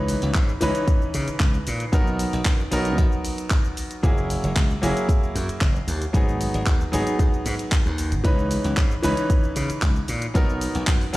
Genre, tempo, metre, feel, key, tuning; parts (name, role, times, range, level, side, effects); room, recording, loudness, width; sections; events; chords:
nu-disco, nu disco; 114 BPM; 4/4; straight; C# dorian; A4 = 440 Hz
bright grand piano; accompaniment; 0.0-11.2 s; E3 to B4; -26 LUFS; equal; slapback echo
glassy slap bass; bass; 0.0-11.2 s; F#1 to C#3; -26 LUFS; equal
pop drum kit; drums; 0.1-11.2 s; handclaps, hi-hat, shaker; -30 LUFS; equal; studio reverb
electronic kick drum; drums; 0.3-11.0 s; -20 LUFS; equal; studio reverb
little or no reverb; played on a big sound system in a bare room, stone room reverb; -20 LUFS; side -18 dB against mid
0.0-11.2 A section
0.0 C#m9; 1.9 Bmaj7; 4.0 F#9; 6.1 G#m7; 8.2 C#m9; 10.3 Bmaj7